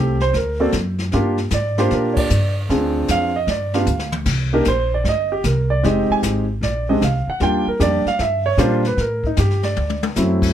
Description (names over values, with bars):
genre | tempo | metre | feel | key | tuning
jazz piano trio | 153 BPM | 4/4 | swing 66% on 8ths | unclear | A4 = 441 Hz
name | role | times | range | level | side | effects
warm concert grand piano | melody | 0.0-10.5 s | F#3 to Ab5 | -19 LUFS | right 1 dB | none
upright bass | bass | 0.0-10.5 s | F1 to Bb2 | -21 LUFS | equal | none
jazz brush drum kit | drums | 0.2-10.5 s | brushed snare drum, crash cymbal, hi-hat, kick drum, ride cymbal, snare drum, toms | -26 LUFS | left 3 dB | none
room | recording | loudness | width
little or no reverb | none | -16 LUFS | side -10 dB against mid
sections
0.0-10.5 A section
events
band accent 2.1; drum fill 3.9-4.3, 9.8-10.2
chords
0.3 Daug; 1.1 Gm7; 2.7 Dm7b5; 3.5 G7(no3); 4.3 Cm9; 5.8 Fm7; 6.6 Bbadd9; 7.4 Ebmaj9; 9.0 Gmadd9; 9.8 D7